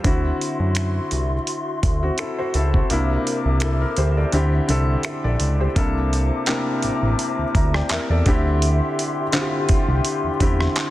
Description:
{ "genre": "contemporary R&B", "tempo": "84 BPM", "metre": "4/4", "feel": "swing 54% on 16ths", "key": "unclear", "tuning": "A4 = 441 Hz", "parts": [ { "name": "felt-muted upright piano", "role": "accompaniment", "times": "0.0-10.9 s", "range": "C3 to Bb5", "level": "-24 LUFS", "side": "left 1 dB", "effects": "none" }, { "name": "mellow large flute ensemble", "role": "sustained chords", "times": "0.0-10.9 s", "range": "F#4 to D6", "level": "-29 LUFS", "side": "left 3 dB", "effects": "none" }, { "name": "fat analog bass", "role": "bass", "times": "0.0-10.7 s", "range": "A1 to F#2", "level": "-20 LUFS", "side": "equal", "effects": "none" }, { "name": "dusty soul sampler-style drum kit", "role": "drums", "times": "0.0-10.9 s", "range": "finger snaps, handclaps, hi-hat, kick drum, rim click", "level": "-22 LUFS", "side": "equal", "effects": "soft clipping on snare" }, { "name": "worn celesta", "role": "texture", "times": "6.5-8.6 s", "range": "G5", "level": "-38 LUFS", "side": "right 7 dB", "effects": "none" } ], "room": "studio ambience", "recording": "dense, heavily limited modern master", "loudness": "-18 LUFS", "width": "side -15 dB against mid", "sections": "0.0-5.8 A section; 5.8-10.9 B section", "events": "kick muted 2.9-5.8", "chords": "0.0 D9; 2.9 C9; 4.3 D9sus4; 5.8 C13; 8.3 D9sus4", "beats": "| 0.04 0.76 1.47 2.19 | 2.90 3.62 4.33 5.04 | 5.76 6.47 7.19 7.90 | 8.62 9.33 10.04 10.76" }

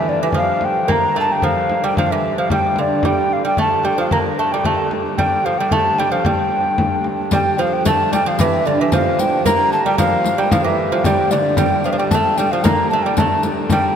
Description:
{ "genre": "medieval dance", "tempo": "112 BPM", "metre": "2/4", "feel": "straight", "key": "G dorian", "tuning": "A4 = 439 Hz", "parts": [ { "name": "mellow hollow tenor recorder", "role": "melody", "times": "0.0-14.0 s", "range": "D5 to Bb5", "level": "-18 LUFS", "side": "equal", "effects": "none" }, { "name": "lute", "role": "second line", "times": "0.0-14.0 s", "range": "D3 to Bb3", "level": "-20 LUFS", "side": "right 3 dB", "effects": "none" }, { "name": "warm hurdy-gurdy", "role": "drone", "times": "0.0-14.0 s", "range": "G2 to D3", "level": "-26 LUFS", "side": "equal", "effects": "none" }, { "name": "frame drum", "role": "percussion", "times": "0.3-13.9 s", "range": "none", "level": "-22 LUFS", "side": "left 2 dB", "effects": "none" }, { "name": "riq", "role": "percussion", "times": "7.3-13.9 s", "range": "none", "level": "-26 LUFS", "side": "left 4 dB", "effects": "none" } ], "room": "wet cathedral reverb, RT60 4.8 s", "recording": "none", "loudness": "-14 LUFS", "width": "side -8 dB against mid", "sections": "0.0-7.3 A section; 7.3-14.0 A section", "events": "none", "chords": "none", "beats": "0.34 | 0.88 1.42 | 1.96 2.49 | 3.03 3.57 | 4.11 4.64 | 5.18 5.71 | 6.25 6.78 | 7.32 7.85 | 8.39 8.92 | 9.45 9.99 | 10.52 11.05 | 11.58 12.11 | 12.64 13.17 | 13.71" }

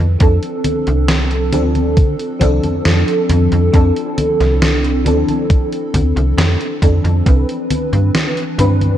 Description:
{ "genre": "vaporwave", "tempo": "68 BPM", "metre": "4/4", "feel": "straight", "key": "unclear", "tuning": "A4 = 440 Hz", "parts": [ { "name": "warbly tape-like pad", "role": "sustained chords", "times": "0.0-9.0 s", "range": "E3 to B4", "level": "-23 LUFS", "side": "equal", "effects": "chorus, built-in reverb" }, { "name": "slap-like FM bass", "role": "bass", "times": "0.0-9.0 s", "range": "C2 to D3", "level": "-15 LUFS", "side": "equal", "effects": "tube saturation" }, { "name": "FM electric piano with soft pad layer", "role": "accompaniment", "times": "0.2-9.0 s", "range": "E3 to B4", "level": "-18 LUFS", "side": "equal", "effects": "phaser, ensemble chorus, analog delay" }, { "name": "electronic kick drum", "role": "drums", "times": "0.2-7.4 s", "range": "none", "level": "-13 LUFS", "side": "equal", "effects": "none" }, { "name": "gated 80s digital drum machine", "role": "drums", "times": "0.2-9.0 s", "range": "congas, hi-hat, snare drum", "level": "-20 LUFS", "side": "left 1 dB", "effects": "gated reverb, gated reverb snare" } ], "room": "light reverb, digital ambience", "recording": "dark, warm production, cassette tape", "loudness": "-12 LUFS", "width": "side -11 dB against mid", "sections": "0.0-9.0 A section", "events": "none", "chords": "0.0 F6; 7.3 Cmaj9", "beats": "| 0.20 1.09 1.97 2.85 | 3.73 4.62 5.50 6.38 | 7.26 8.14" }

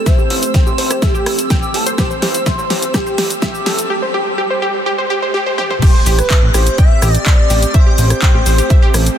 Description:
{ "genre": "progressive house", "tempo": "125 BPM", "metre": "4/4", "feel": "straight", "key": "A minor", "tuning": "A4 = 443 Hz", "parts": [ { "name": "expressive portamento lead", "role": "melody", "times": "0.0-9.1 s", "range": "G4 to E5", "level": "-21 LUFS", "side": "equal", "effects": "analog chorus, digital delay" }, { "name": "airy breathy pad", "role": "sustained chords", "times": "0.0-9.2 s", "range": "A3 to G4", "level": "-26 LUFS", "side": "equal", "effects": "chorus, sidechain pumping" }, { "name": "riser and impact", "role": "sound effects", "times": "1.5-7.7 s", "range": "none", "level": "-30 LUFS", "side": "right 1 dB", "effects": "none" }, { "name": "twinkling granular texture", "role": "texture", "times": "0.0-3.9 s", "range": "E6", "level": "-28 LUFS", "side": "right 2 dB", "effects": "built-in reverb, sidechain pumping" }, { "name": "wide unison pluck", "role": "arpeggios", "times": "0.1-8.9 s", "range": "G4 to G5", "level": "-20 LUFS", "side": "right 1 dB", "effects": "sidechain pumping, digital delay" }, { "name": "big-room dance drum kit", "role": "drums", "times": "0.1-9.2 s", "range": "crash cymbal, handclaps, hi-hat, rim click, shaker, snare drum, toms", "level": "-20 LUFS", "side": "equal", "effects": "studio reverb, sidechain pumping on hats, sidechain pumping on perc, sidechain pumping on toms, sidechain pumping on cymbals" }, { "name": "electronic kick drum", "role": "drums", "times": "0.1-8.8 s", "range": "none", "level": "-12 LUFS", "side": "equal", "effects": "studio reverb" }, { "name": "fat analog bass", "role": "bass", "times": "0.3-9.1 s", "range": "A1", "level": "-16 LUFS", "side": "equal", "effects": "sidechain pumping, high-pass filter" }, { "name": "airy dreamy lead", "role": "second line", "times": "5.8-9.1 s", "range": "B4 to E5", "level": "-23 LUFS", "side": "equal", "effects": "chorus, sidechain pumping, digital delay" } ], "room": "light reverb, digital ambience", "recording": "dense, heavily limited modern master, high-pass filter", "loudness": "-11 LUFS", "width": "side -10 dB against mid", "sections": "0.0-5.8 A section; 5.8-9.2 B section", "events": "build-up 0.0-5.8; drum fill 0.0-3.9, 5.6; filter sweep on synth pluck 0.0-5.8; filter sweep on analog synth pad 0.0-5.8; riser 1.5-5.8; drop 5.8-9.2; impact 5.8-7.7", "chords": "0.0 Am7", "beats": "| 0.06 0.54 1.02 1.50 | 1.98 2.46 2.94 3.42 | 3.90 4.38 4.86 5.34 | 5.82 6.30 6.78 7.26 | 7.74 8.22 8.70" }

